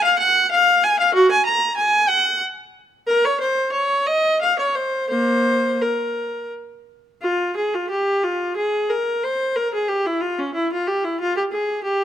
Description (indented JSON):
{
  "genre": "classical, baroque-style suite movement for unaccompanied viola",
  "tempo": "84-96 BPM",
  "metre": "3/4",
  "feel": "rubato",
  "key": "Bb minor, F minor from 7.2 s",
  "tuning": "A4 = 445 Hz",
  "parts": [
    { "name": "rich viola", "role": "solo", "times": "0.0-12.0 s", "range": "Bb3 to Bb5", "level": "-17 LUFS", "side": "equal", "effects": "none" }
  ],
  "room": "light reverb",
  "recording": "close, detailed microphones",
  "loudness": "-17 LUFS",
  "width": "side -10 dB against mid",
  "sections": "0.0-7.2 A section; 7.2-12.0 A section",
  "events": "none",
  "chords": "none",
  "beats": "0.50 | 1.14 1.78 2.42 | 3.08 3.73 4.41 | 5.10 5.81 6.51 | 7.21 7.88 8.55 | 9.22 9.87 10.53 | 11.20 11.84"
}